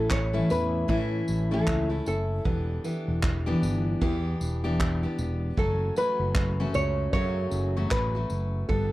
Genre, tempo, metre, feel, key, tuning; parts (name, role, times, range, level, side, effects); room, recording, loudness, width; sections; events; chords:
acoustic pop; 77 BPM; 4/4; swing 60% on 16ths; A4 = 440 Hz
nylon-string guitar; melody; 0.0-8.9 s; A4 to C#5; -30 LUFS; equal
picked steel-string acoustic guitar; accompaniment; 0.0-8.9 s; F#2 to A4; -29 LUFS; left 1 dB
fretless electric bass; bass; 0.0-8.9 s; E1 to A2; -29 LUFS; equal
natural country drum kit; drums; 0.1-8.9 s; handclaps, kick drum, tambourine; -29 LUFS; right 1 dB
light reverb; dark, warm production, faint mains hum; -24 LUFS; side -17 dB against mid
0.0-8.9 A section
0.0 A; 2.5 Em7; 5.6 F#m